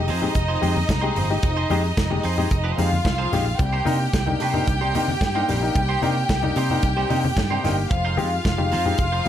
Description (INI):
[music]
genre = disco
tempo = 111 BPM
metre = 4/4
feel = straight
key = C minor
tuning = A4 = 441 Hz
[part]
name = rich studio violin section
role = second line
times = 0.0-9.3 s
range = Eb4 to G5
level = -25 LUFS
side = equal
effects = none
[part]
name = warm concert grand piano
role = accompaniment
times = 0.0-9.3 s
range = C3 to G4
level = -27 LUFS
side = left 6 dB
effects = none
[part]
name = fingered electric bass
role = bass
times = 0.0-9.3 s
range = F1 to C3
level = -24 LUFS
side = right 1 dB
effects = none
[part]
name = twangy electric guitar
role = accompaniment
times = 0.1-9.3 s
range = Ab3 to C5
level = -31 LUFS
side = right 8 dB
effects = wide subtle chorus
[part]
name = modern studio drum kit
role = drums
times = 0.1-9.3 s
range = hi-hat, kick drum, snare drum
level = -26 LUFS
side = right 1 dB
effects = none
[part]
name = congas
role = percussion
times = 0.1-9.3 s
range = none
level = -30 LUFS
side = left 3 dB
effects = none
[sound]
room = light reverb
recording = none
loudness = -19 LUFS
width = side -10 dB against mid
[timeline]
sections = 0.0-9.3 A section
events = none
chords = 0.0 Fm7; 3.6 Cm7; 7.9 Fm7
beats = 0.35 0.89 | 1.43 1.97 2.51 3.05 | 3.59 4.13 4.67 5.21 | 5.75 6.29 6.83 7.37 | 7.91 8.45 8.99